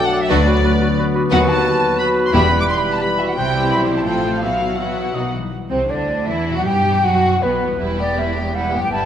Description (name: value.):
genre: classical, dramatic, fast romantic movement for symphony orchestra.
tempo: 154-179 BPM.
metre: 3/4.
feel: rubato.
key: E minor.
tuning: A4 = 440 Hz.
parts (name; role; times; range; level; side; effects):
rich symphonic violin section; melody; 0.0-9.1 s; B3 to D6; -24 LUFS; left 1 dB; none.
silver concert flute; second line; 0.0-9.1 s; B4 to D6; -22 LUFS; left 1 dB; none.
warm clarinet; second line; 0.0-5.2 s; E4 to A4; -25 LUFS; left 1 dB; none.
warm oboe; second line; 0.0-5.3 s; B4 to E5; -25 LUFS; right 1 dB; none.
clear trombone section; sustained chords; 0.0-5.3 s; D#3 to B3; -25 LUFS; right 2 dB; none.
dark French horn section; sustained chords; 0.0-5.3 s; A3 to G4; -25 LUFS; left 4 dB; none.
concert harp; arpeggios; 0.0-9.1 s; E2 to E5; -27 LUFS; left 6 dB; none.
rich symphonic violin section; second line; 0.3-9.1 s; B3 to B4; -26 LUFS; left 2 dB; none.
warm studio viola section; accompaniment; 0.3-9.1 s; F3 to G4; -26 LUFS; equal; none.
rich symphonic cello section; bass; 0.3-9.1 s; D2 to G3; -24 LUFS; right 2 dB; none.
rich symphonic double bass section; bass; 0.3-9.1 s; E1 to G2; -25 LUFS; right 3 dB; none.
timpani; percussion; 2.3-2.8 s; E2; -25 LUFS; equal; none.
room: wet scoring stage reverb, RT60 1.8 s.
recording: none.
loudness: -15 LUFS.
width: side -9 dB against mid.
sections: 0.0-5.5 A section; 5.5-9.1 B section.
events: none.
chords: 0.3 Bm/D; 1.3 B7/D#; 2.3 Em; 3.4 C; 4.1 F/A; 4.4 Bsus4; 5.1 B; 5.5 Em; 6.7 B7; 7.8 Em.